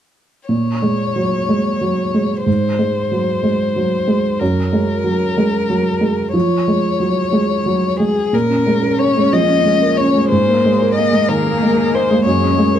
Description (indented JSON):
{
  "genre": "neoclassical piano and strings",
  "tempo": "61 BPM (dotted quarters)",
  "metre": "6/8",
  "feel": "rubato",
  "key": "Bb minor",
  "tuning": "A4 = 439 Hz",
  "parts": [
    { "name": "warm violin", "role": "melody", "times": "0.5-12.8 s", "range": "Ab4 to Eb5", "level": "-18 LUFS", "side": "left 5 dB", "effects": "none" },
    { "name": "felt-muted upright piano", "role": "accompaniment", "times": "0.5-12.8 s", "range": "Gb2 to Bb4", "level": "-16 LUFS", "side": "right 2 dB", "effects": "none" },
    { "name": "rich cello", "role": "second line", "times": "8.3-12.8 s", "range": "Ab3 to Db4", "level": "-22 LUFS", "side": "right 3 dB", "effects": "none" },
    { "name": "deep dark ambient pad", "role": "sustained chords", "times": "9.5-12.8 s", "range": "Bb3 to Eb5", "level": "-24 LUFS", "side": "left 1 dB", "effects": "chorus, built-in reverb" }
  ],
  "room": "light reverb",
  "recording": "dark, warm production",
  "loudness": "-14 LUFS",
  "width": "side -10 dB against mid",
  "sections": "0.5-8.3 A section; 8.3-12.8 B section",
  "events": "none",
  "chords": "0.5 Bbm7; 2.5 Ab; 4.4 Gbadd9; 6.3 Db/F; 8.3 Bbm7; 10.3 Abadd9; 12.3 Gbadd9"
}